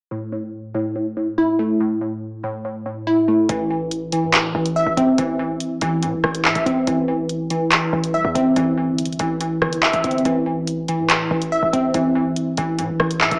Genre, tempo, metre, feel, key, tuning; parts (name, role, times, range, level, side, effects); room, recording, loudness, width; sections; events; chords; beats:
hip hop, drill; 142 BPM; 4/4; half-time; A minor; A4 = 439 Hz
glassy wavetable pluck; accompaniment; 0.1-13.4 s; A2 to E5; -22 LUFS; equal; chorus
hard-hitting 808-style bass; bass; 3.5-13.4 s; G1 to A2; -31 LUFS; equal
drill drum kit; drums; 3.5-13.4 s; handclaps, hi-hat, rim click; -22 LUFS; equal
wet plate reverb, RT60 1.0 s; dreamy mix soaked in reverb, small speaker sound; -20 LUFS; mono
0.1-3.5 A section; 3.5-13.4 B section
0.1 A5; 3.5 Am
| 0.11 0.53 0.96 1.38 | 1.80 2.22 2.65 3.07 | 3.49 3.91 4.34 4.76 | 5.18 5.60 6.03 6.45 | 6.87 7.29 7.72 8.14 | 8.56 8.98 9.41 9.83 | 10.25 10.68 11.10 11.52 | 11.94 12.37 12.79 13.21